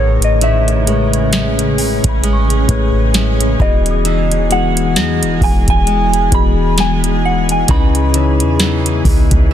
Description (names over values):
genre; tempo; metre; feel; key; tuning
contemporary R&B; 66 BPM; 4/4; swing 58% on 16ths; unclear; A4 = 435 Hz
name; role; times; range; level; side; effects
soft synth bell; melody; 0.0-9.5 s; C#5 to B5; -19 LUFS; equal; chorus, phaser, tape echo
mellow tine electric piano; accompaniment; 0.0-9.5 s; A2 to D#5; -18 LUFS; left 6 dB; none
granular cloud pad; sustained chords; 0.0-9.5 s; C#3 to G#4; -21 LUFS; equal; built-in reverb
flamenco guitar; arpeggios; 0.0-9.5 s; A2 to E4; -23 LUFS; right 7 dB; tape echo
clean 808-style bass; bass; 0.0-9.5 s; E1 to E2; -16 LUFS; equal; none
celesta; texture; 0.0-7.8 s; F#5 to A#6; -29 LUFS; right 3 dB; tape echo
booming analog drum machine; drums; 0.2-9.5 s; hi-hat, kick drum, snare drum; -15 LUFS; equal; none
room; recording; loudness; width
digital ambience; dense, heavily limited modern master; -11 LUFS; side -10 dB against mid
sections
0.0-9.5 A section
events
none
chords
0.0 Amaj7; 3.6 Emaj7; 7.7 C#m9